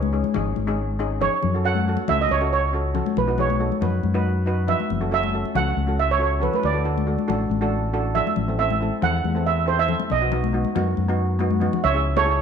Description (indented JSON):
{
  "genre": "calypso",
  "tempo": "138 BPM",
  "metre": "4/4",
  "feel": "straight",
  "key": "unclear",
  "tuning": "A4 = 438 Hz",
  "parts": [
    { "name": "steel pan", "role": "melody", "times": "0.0-12.4 s", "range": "A4 to F#5", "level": "-23 LUFS", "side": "right 7 dB", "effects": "slapback echo" },
    { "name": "steel pan", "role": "accompaniment", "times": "0.0-12.4 s", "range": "B3 to B4", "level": "-28 LUFS", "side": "right 1 dB", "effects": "none" },
    { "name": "fingered electric bass", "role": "bass", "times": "0.0-12.4 s", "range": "F#1 to F#2", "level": "-24 LUFS", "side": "left 1 dB", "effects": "none" },
    { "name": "congas", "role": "percussion", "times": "0.0-12.3 s", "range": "none", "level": "-27 LUFS", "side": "left 10 dB", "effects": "none" }
  ],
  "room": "moderate echo chamber reverb, RT60 1.8 s, small room ambience",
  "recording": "1960s-style stereo with parts hard left and right",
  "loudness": "-20 LUFS",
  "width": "side -7 dB against mid",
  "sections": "0.0-11.8 A section",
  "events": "drum fill 11.4-11.8",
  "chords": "0.0 C#sus2; 1.4 F#m; 3.2 Badd9; 4.9 F#m; 6.6 D; 8.4 Am; 10.1 B; 11.8 C#m",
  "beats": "0.13 0.56 1.00 | 1.43 1.86 2.30 2.73 | 3.17 3.60 4.03 4.47 | 4.90 5.33 5.77 6.20 | 6.63 7.07 7.50 7.93 | 8.37 8.80 9.23 9.67 | 10.10 10.54 10.97 11.40 | 11.84 12.27"
}